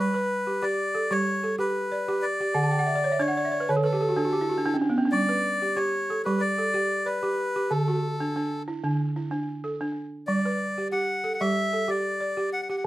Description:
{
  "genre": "west african traditional",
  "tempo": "93 BPM",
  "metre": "4/4",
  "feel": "straight",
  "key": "G lydian",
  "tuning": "A4 = 439 Hz",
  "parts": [
    { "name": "melodica", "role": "melody", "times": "0.0-12.8 s", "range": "A4 to F#5", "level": "-27 LUFS", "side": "left 1 dB", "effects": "none" },
    { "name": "balafon", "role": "arpeggios", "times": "0.0-12.9 s", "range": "D3 to A5", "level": "-26 LUFS", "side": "right 1 dB", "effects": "slapback echo" }
  ],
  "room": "light reverb",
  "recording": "close, detailed microphones",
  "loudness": "-24 LUFS",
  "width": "side -16 dB against mid",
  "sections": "0.0-12.9 A section",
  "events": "balafon fill 2.6-5.1",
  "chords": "0.0 G; 2.6 D5; 5.1 G; 7.7 D; 10.3 G"
}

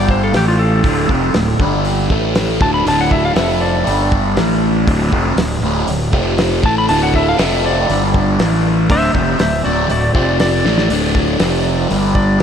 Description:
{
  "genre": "psychedelic rock",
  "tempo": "119 BPM",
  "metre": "4/4",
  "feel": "straight",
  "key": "unclear",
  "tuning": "A4 = 440 Hz",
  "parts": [
    { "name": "clean lap steel guitar", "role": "melody", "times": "0.0-12.4 s", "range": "F4 to B5", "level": "-19 LUFS", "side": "left 1 dB", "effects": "diffuse ambient delay" },
    { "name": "fuzz guitar", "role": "riff", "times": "0.0-12.4 s", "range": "D2 to A3", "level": "-16 LUFS", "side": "equal", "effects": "distortion, phaser" },
    { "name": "fuzz fingered electric bass", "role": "bass", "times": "0.0-12.4 s", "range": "D1 to A1", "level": "-19 LUFS", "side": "equal", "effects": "overdrive" },
    { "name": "cloth-damped thuddy drum kit", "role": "drums", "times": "0.1-12.4 s", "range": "hi-hat, kick drum, snare drum", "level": "-20 LUFS", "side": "equal", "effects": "none" }
  ],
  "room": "moderate huge ambient reverb, RT60 6.7 s",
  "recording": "dreamy mix soaked in reverb",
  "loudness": "-12 LUFS",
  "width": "side -8 dB against mid",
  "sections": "0.0-12.4 A section",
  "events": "electric slide guitar solo 0.0-12.4; drum fill 10.7",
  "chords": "0.3 A5; 0.8 D5; 1.6 G5; 2.1 A5; 2.6 D5; 3.4 F5; 3.9 G5; 4.4 A5; 4.9 D5; 6.1 F5; 6.6 D5; 7.4 F5; 7.9 G5; 8.4 A5; 8.9 D; 10.1 F5; 10.7 D5; 11.4 F5; 11.9 G5"
}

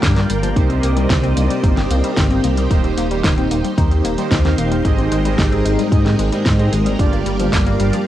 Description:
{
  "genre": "synthwave",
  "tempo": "112 BPM",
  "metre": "4/4",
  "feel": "straight",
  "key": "unclear",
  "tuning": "A4 = 440 Hz",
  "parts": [
    { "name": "string machine, full ensemble", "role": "sustained chords", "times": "0.0-8.1 s", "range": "G3 to G5", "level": "-21 LUFS", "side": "equal", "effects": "ensemble chorus, sidechain pumping, cassette tape" },
    { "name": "analog pluck", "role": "arpeggios", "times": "0.0-8.0 s", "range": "F3 to Eb4", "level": "-24 LUFS", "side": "left 8 dB", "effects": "chorus, cassette tape, tape echo" },
    { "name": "analog synth brass", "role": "stabs", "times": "0.0-8.0 s", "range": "G2 to F5", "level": "-24 LUFS", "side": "right 8 dB", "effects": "chorus, cassette tape, tape echo" },
    { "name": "dark detuned saw bass", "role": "bass", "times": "0.0-7.9 s", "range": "Eb1 to Ab2", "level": "-18 LUFS", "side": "equal", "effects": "none" },
    { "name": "electronic kick drum", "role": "drums", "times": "0.0-7.6 s", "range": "none", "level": "-18 LUFS", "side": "equal", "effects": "cassette tape" },
    { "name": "pop drum kit", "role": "drums", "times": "0.0-8.0 s", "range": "hi-hat, snare drum", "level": "-22 LUFS", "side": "equal", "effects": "cassette tape" }
  ],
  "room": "light reverb",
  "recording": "home recording on cassette",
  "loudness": "-14 LUFS",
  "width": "side -12 dB against mid",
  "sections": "0.0-8.1 A section",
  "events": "none",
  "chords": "0.0 Gm7; 0.6 Cm7; 2.7 Eb6; 4.8 Abmaj7; 7.0 Gm7"
}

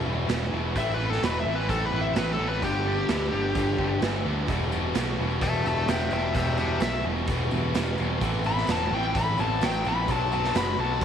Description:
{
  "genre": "classic rock",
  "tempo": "129 BPM",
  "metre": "4/4",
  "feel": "straight",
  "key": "E minor",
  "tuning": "A4 = 440 Hz",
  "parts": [
    { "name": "picked steel-string acoustic guitar", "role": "accompaniment", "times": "0.0-11.0 s", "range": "E2 to G4", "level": "-36 LUFS", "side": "right 10 dB", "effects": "none" },
    { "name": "mellow tonewheel organ", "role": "sustained chords", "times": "0.0-11.0 s", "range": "B3 to E5", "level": "-41 LUFS", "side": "left 7 dB", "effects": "none" },
    { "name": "distorted electric guitar", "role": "riff", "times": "0.0-11.0 s", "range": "E2 to G#3", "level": "-34 LUFS", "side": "right 11 dB", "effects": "overdrive" },
    { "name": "tight distorted guitar", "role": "riff", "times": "0.0-11.0 s", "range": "E2 to G#3", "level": "-32 LUFS", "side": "left 11 dB", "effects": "distortion" },
    { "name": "growling picked electric bass", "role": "bass", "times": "0.0-11.0 s", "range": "E1 to D2", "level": "-29 LUFS", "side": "equal", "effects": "overdrive" },
    { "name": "raw garage drum kit", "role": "drums", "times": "0.3-11.0 s", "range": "hi-hat, kick drum, snare drum", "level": "-30 LUFS", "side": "right 4 dB", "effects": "none" },
    { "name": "smooth overdriven lead guitar", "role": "melody", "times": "0.8-11.0 s", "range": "G4 to B5", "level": "-28 LUFS", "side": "left 3 dB", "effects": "none" },
    { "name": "tambourine", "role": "percussion", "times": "4.6-11.0 s", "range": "none", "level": "-50 LUFS", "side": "left 13 dB", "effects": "none" }
  ],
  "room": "light reverb, small room ambience",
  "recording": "1960s-style stereo with parts hard left and right",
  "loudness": "-23 LUFS",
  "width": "side -8 dB against mid",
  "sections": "0.0-11.0 A section",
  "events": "lead electric guitar solo 0.0-11.0",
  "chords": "0.0 Em; 0.8 Amadd9; 2.6 G; 4.5 Em; 8.2 Amadd9; 10.1 Bm"
}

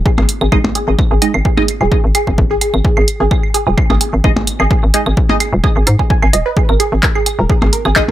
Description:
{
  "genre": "minimal techno",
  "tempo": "129 BPM",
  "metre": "4/4",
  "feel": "swing 53% on 16ths",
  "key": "unclear",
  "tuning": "A4 = 440 Hz",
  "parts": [
    { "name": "hollow knocking FM bass", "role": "bass", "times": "0.0-8.1 s", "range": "D#1 to G#2", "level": "-15 LUFS", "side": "equal", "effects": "sidechain pumping" },
    { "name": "resonant blip pluck", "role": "riff", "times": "0.1-8.1 s", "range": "G#4 to G#5", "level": "-19 LUFS", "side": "right 3 dB", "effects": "phaser, lush chorus, sidechain pumping, digital delay" },
    { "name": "electronic kick drum", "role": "drums", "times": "0.1-8.1 s", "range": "none", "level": "-14 LUFS", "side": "equal", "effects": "none" },
    { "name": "percussion blips and claves", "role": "percussion", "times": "0.2-8.1 s", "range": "none", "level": "-21 LUFS", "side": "right 1 dB", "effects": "digital delay" },
    { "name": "punchy analog drum machine", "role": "drums", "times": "0.3-8.1 s", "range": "handclaps, hi-hat", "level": "-15 LUFS", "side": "right 1 dB", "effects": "none" },
    { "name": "filtered dub chord stab", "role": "stabs", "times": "0.5-8.0 s", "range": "G#3 to D#5", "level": "-19 LUFS", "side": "right 1 dB", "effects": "phaser, wide subtle chorus, digital delay" }
  ],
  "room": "little or no reverb",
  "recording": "none",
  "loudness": "-11 LUFS",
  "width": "side -13 dB against mid",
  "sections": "0.0-8.1 A section",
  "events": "none",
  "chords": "0.0 G#5"
}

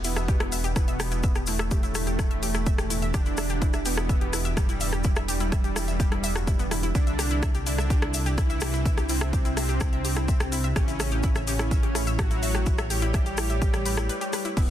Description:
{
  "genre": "melodic techno",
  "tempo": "126 BPM",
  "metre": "4/4",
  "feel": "straight",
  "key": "E minor",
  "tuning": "A4 = 440 Hz",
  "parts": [
    { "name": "soft supersaw", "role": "melody", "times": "0.0-14.7 s", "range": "G2 to G4", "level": "-32 LUFS", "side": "equal", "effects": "ping-pong delay" },
    { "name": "evolving wavetable pad", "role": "sustained chords", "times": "0.0-14.7 s", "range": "E3 to C#5", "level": "-36 LUFS", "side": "right 4 dB", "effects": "chorus, built-in reverb, sidechain pumping" },
    { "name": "analog pluck", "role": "arpeggios", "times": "0.0-14.7 s", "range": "B3 to E5", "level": "-35 LUFS", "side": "equal", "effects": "chorus, sidechain pumping, ping-pong delay" },
    { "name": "dark detuned saw bass", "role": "bass", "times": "0.0-14.7 s", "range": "E1 to C2", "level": "-28 LUFS", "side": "equal", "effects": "sidechain pumping" },
    { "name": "house drum kit", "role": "drums", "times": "0.0-14.7 s", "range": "crash cymbal, hi-hat, rim click", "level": "-32 LUFS", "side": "left 1 dB", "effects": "overdrive, sidechain pumping on hats, sidechain pumping on cymbals" },
    { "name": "tube shaker", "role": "percussion", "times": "0.0-14.7 s", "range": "none", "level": "-38 LUFS", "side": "left 6 dB", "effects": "none" },
    { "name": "impact", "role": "sound effects", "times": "0.0-1.2 s", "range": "none", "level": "barely audible", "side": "none", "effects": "none" },
    { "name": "electronic kick drum", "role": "drums", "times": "0.3-14.7 s", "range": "none", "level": "-24 LUFS", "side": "equal", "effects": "overdrive" }
  ],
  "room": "digital ambience",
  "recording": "dense, heavily limited modern master",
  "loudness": "-23 LUFS",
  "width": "side -11 dB against mid",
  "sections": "0.0-14.7 A section",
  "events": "impact 0.0-1.2; break 14.1-14.6",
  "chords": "0.0 Em7; 7.0 Cadd9; 10.8 A"
}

